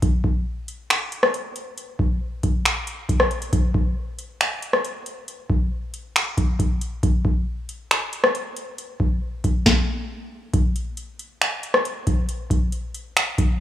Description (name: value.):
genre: hip hop.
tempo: 137 BPM.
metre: 4/4.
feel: half-time.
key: none.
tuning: none.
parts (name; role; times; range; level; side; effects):
booming analog drum machine; drums; 0.0-13.5 s; finger snaps, hi-hat, kick drum, rim click, snare drum; -20 LUFS; equal; none.
room: light reverb.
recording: rough home demo mix, studio ambience.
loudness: -20 LUFS.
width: side -12 dB against mid.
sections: 0.0-10.5 A section; 10.5-13.6 B section.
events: none.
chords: none.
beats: | 0.02 0.46 0.90 1.34 | 1.78 2.21 2.65 3.09 | 3.53 3.97 4.40 4.84 | 5.28 5.72 6.16 6.59 | 7.03 7.47 7.91 8.35 | 8.78 9.22 9.66 10.10 | 10.54 10.97 11.41 11.85 | 12.29 12.72 13.16.